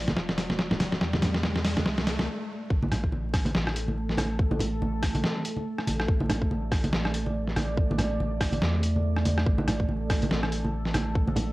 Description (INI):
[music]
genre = deep dubstep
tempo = 142 BPM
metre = 4/4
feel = swing 58% on 16ths, half-time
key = unclear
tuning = A4 = 443 Hz
[part]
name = deep dark ambient pad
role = sustained chords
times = 0.0-11.5 s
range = A3 to D5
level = -33 LUFS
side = right 2 dB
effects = chorus, built-in reverb, cassette tape
[part]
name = soft dub sub bass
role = bass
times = 0.0-11.5 s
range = E1 to E2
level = -30 LUFS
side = equal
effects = none
[part]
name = riser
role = sound effects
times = 0.0-2.3 s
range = none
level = -34 LUFS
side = equal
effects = none
[part]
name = trip hop sampler-style drum kit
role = drums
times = 0.1-11.5 s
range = hi-hat, rim click, snare drum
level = -29 LUFS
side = equal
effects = studio ambience, cassette tape
[part]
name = congas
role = percussion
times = 0.1-11.5 s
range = none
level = -30 LUFS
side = right 1 dB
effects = none
[part]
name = electronic kick drum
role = drums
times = 0.2-11.3 s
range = none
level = -26 LUFS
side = equal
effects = overdrive, high-pass filter on kick, studio ambience, cassette tape
[sound]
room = light reverb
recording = home recording on cassette, vinyl crackle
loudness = -24 LUFS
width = side -19 dB against mid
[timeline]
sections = 0.0-2.7 A section; 2.7-11.5 B section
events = build-up 0.0-2.7; drum fill 0.0-2.3; riser 0.0-2.3; stop 2.3-2.7; drop 2.7-11.5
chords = 0.0 Am; 2.7 N.C.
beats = 0.17 0.59 | 1.01 1.44 1.86 2.28 | 2.70 3.13 3.55 3.97 | 4.39 4.82 5.24 5.66 | 6.08 6.51 6.93 7.35 | 7.77 8.20 8.62 9.04 | 9.46 9.89 10.31 10.73 | 11.15